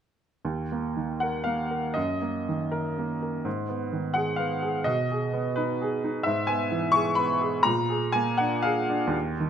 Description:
classical, romantic character piece for solo piano; 74-89 BPM (dotted quarters); 6/8; rubato; Eb minor; A4 = 444 Hz
clear upright piano; solo; 0.4-9.5 s; Eb2 to Db6; -24 LUFS; equal
moderate recital hall reverb, RT60 1.5 s; close, detailed microphones; -24 LUFS; side -8 dB against mid
0.4-9.5 A section
0.4 Eb5; 2.0 Ebm/Gb; 3.5 Abm; 4.9 Abm/Cb; 6.3 E/G#; 7.7 Bb7

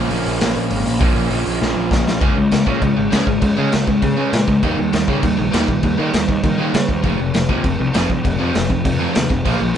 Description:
punk rock; 199 BPM; 4/4; straight; A4 = 439 Hz
crunchy overdriven guitar; riff; 0.0-9.7 s; F2 to Db4; -21 LUFS; right 8 dB
overdriven electric guitar; riff; 0.0-9.8 s; F2 to Eb4; -22 LUFS; left 8 dB
fuzz picked electric bass; bass; 0.0-9.7 s; F1 to Eb3; -22 LUFS; equal; overdrive
raw garage drum kit; drums; 0.1-9.8 s; crash cymbal, hi-hat, kick drum, snare drum; -19 LUFS; equal
light reverb; band playing live in one room, nothing above 10.8 kHz; -15 LUFS; side -9 dB against mid
0.0-2.2 A section; 2.2-9.8 B section
half time 0.0-2.2; drum fill 1.6-2.2
0.0 Db; 2.2 Db5; 4.6 Eb; 7.0 F5

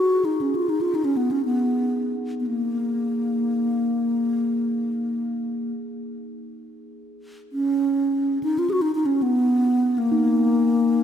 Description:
world meditative, free-time meditation music; free time; A4 = 440 Hz
breathy mellow bass flute; melody; 0.0-11.0 s; Bb3 to Ab4; -21 LUFS; equal; ping-pong delay
bronze singing bowl; texture; 0.0-11.0 s; Eb4 to Ab4; -32 LUFS; right 3 dB
wet church reverb, RT60 3.8 s; -20 LUFS; side -8 dB against mid
0.0-11.0 A section

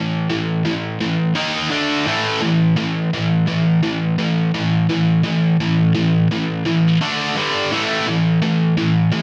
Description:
metal; 85 BPM; 4/4; straight; A4 = 439 Hz
high-gain distorted guitar; solo; 0.0-9.2 s; G2 to D#4; -18 LUFS; equal; distortion
wet studio reverb, RT60 0.8 s; dark, warm production; -18 LUFS; mono
0.0-9.2 A section
0.0 A5; 1.4 D#5; 1.7 D5; 2.1 A5; 7.0 D5; 7.4 G5; 7.7 A5

